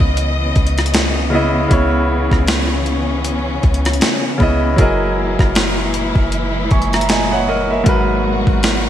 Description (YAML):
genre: contemporary R&B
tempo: 78 BPM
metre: 4/4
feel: swing 58% on 16ths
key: C# dorian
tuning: A4 = 440 Hz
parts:
  - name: clear grand piano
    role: accompaniment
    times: 0.0-8.9 s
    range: G#2 to C#6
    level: -19 LUFS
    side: right 1 dB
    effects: none
  - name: warm studio string section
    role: sustained chords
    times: 0.0-8.9 s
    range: A#2 to D#5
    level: -21 LUFS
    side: left 1 dB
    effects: sidechain pumping
  - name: soft 808-style bass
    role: bass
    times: 0.0-8.9 s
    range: F#1 to C#2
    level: -20 LUFS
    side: equal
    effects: none
  - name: gated 80s digital drum machine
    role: drums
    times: 0.0-8.8 s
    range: hi-hat, kick drum, rim click, snare drum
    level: -16 LUFS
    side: equal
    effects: gated reverb, gated reverb snare, overdrive
room: light reverb, digital ambience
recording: bright 1980s-style digital production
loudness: -13 LUFS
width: side -11 dB against mid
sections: 0.0-8.9 A section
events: none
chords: 0.0 C#m9; 4.8 F#13; 7.9 G#m9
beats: 0.17 0.94 | 1.71 2.48 3.25 4.02 | 4.79 5.56 6.33 7.10 | 7.87 8.63